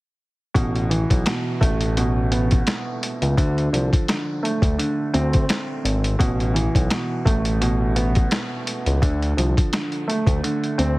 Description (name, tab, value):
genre	hip hop, boom-bap hip-hop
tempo	85 BPM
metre	4/4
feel	swing 55% on 16ths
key	A minor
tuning	A4 = 440 Hz
part	warm grand piano	accompaniment	0.5-11.0 s	B2 to C4	-24 LUFS	right 1 dB	cassette tape, high-pass filter, low-pass filter
part	smooth synth bass	bass	0.6-11.0 s	G#1 to D2	-21 LUFS	equal	none
part	boom bap sampler-style drum kit	drums	0.6-11.0 s	hi-hat, kick drum, snare drum	-22 LUFS	equal	none
room	light reverb, digital ambience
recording	heavily compressed radio sound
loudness	-19 LUFS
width	side -20 dB against mid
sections	0.6-11.0 A section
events	none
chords	0.6 Asus2; 3.4 Dm7; 6.2 Asus2; 9.0 Dm7